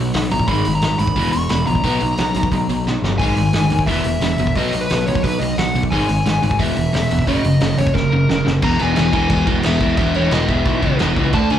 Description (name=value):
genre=punk rock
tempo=177 BPM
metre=4/4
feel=straight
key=unclear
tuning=A4 = 438 Hz
part: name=smooth overdriven lead guitar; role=melody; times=0.0-11.6 s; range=A#4 to C#6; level=-22 LUFS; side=left 2 dB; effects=slapback echo, ping-pong delay
part: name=overdriven electric guitar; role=riff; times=0.0-11.6 s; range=E2 to D4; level=-19 LUFS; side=equal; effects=none
part: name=fuzz picked electric bass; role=bass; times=0.0-11.6 s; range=E1 to D#2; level=-20 LUFS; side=equal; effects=overdrive
part: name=loose indie drum kit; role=drums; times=0.1-11.6 s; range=crash cymbal, hi-hat, kick drum, snare drum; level=-22 LUFS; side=equal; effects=none
room=little or no reverb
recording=live gig heard through the venue's PA, club ambience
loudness=-15 LUFS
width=side -10 dB against mid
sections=0.0-8.6 A section; 8.6-11.6 B section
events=drum fill 2.9-3.2, 8.0-8.6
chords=0.5 G#5; 1.2 E5; 1.8 B5; 3.2 G#5; 3.9 E5; 4.6 B5; 5.9 G#5; 6.6 E5; 7.3 F#; 8.6 E